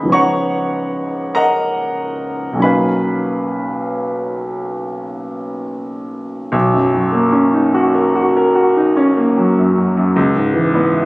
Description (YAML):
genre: classical, impressionist solo piano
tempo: 45-52 BPM (dotted quarters)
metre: 9/8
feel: rubato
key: B lydian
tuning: A4 = 440 Hz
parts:
  - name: clear concert grand piano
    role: solo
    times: 0.0-11.1 s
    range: B1 to D#6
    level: -14 LUFS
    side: equal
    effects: none
room: moderate recital hall reverb, RT60 1.4 s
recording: recorded on a phone in the room, studio reverb, compression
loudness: -13 LUFS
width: side -23 dB against mid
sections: 0.0-6.5 A section; 6.5-11.1 B section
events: none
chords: 0.0 C#9; 6.5 Bmaj9; 10.2 C#m7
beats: 0.14 1.37 | 2.64 3.95 5.22 | 6.54 7.75 8.96 | 10.16